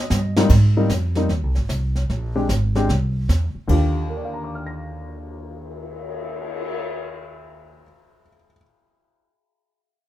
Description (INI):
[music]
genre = jazz piano trio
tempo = 150 BPM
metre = 4/4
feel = swing 65% on 8ths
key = Eb major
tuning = A4 = 439 Hz
[part]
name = dark baby grand piano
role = melody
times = 0.0-8.6 s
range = Eb2 to Bb6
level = -23 LUFS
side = left 2 dB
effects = none
[part]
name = upright bass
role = bass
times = 0.1-7.8 s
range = Ab1 to Ab2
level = -20 LUFS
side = right 1 dB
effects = none
[part]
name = jazz brush drum kit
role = drums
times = 0.1-6.8 s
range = brushed snare drum, crash cymbal, cymbal swell, hi-hat, kick drum, snare drum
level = -27 LUFS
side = equal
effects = none
[sound]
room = light reverb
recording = minimal, uncompressed stereo recording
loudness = -19 LUFS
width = side -14 dB against mid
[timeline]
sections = 0.5-3.7 A section; 3.7-6.9 B section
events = drum fill 0.0-0.5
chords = 0.5 Ab; 2.1 Bb7sus2; 3.7 Ebmaj9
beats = 0.10 | 0.50 0.90 1.30 1.70 | 2.10 2.49 2.89 3.29 | 3.69 4.09 4.49 4.89 | 5.28 5.68 6.08 6.48